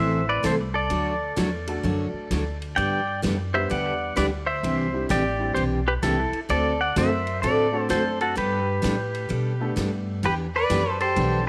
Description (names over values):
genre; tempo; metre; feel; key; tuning
country, western swing; 129 BPM; 4/4; swing 66% on 8ths; G major; A4 = 440 Hz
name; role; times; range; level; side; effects
pedal steel guitar; melody; 0.0-11.5 s; E4 to G5; -28 LUFS; equal; tape echo
clear upright piano; accompaniment; 0.0-11.5 s; E3 to B4; -34 LUFS; equal; none
picked steel-string acoustic guitar; accompaniment; 0.0-11.4 s; C3 to A4; -29 LUFS; equal; none
upright bass; bass; 0.0-11.5 s; A1 to B2; -31 LUFS; equal; none
swinging big-band drum kit; drums; 0.4-11.3 s; hi-hat, kick drum, ride cymbal, snare drum; -39 LUFS; equal; none
clear fiddle; second line; 10.2-11.4 s; G4 to B4; -30 LUFS; equal; none
room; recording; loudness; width
light reverb; none; -24 LUFS; mono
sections
0.0-11.5 A section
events
none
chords
0.0 Am; 0.9 D; 2.8 G; 4.6 Cadd9; 6.5 D7; 8.4 Gadd9; 10.2 Em7